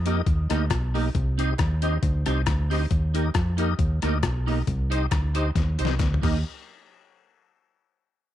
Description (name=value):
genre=ska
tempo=136 BPM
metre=4/4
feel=swing 54% on 8ths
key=Eb major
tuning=A4 = 440 Hz
part: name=deep dub fingered electric bass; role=bass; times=0.0-6.4 s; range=Cb2 to F2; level=-24 LUFS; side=equal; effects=none
part: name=clean electric guitar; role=accompaniment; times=0.1-6.4 s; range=Bb3 to C5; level=-31 LUFS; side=right 16 dB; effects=none
part: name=tonewheel organ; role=stabs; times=0.1-6.4 s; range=Eb4 to Eb5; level=-32 LUFS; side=left 13 dB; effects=overdrive, chorus vibrato, slow rotary speaker
part: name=trip hop sampler-style drum kit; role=drums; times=0.1-6.3 s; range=crash cymbal, hi-hat, kick drum, rim click, snare drum, toms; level=-27 LUFS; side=left 2 dB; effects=none
part: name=group handclap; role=percussion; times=0.7-6.4 s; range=none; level=-43 LUFS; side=right 13 dB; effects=none
room=digital ambience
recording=1960s-style stereo with parts hard left and right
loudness=-22 LUFS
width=side -12 dB against mid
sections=0.0-6.4 A section; 6.4-8.2 B section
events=drum fill 5.6-6.4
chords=0.0 Eb; 1.1 Cm; 2.9 Eb; 4.7 Cm; 6.2 Eb; 6.4 N.C.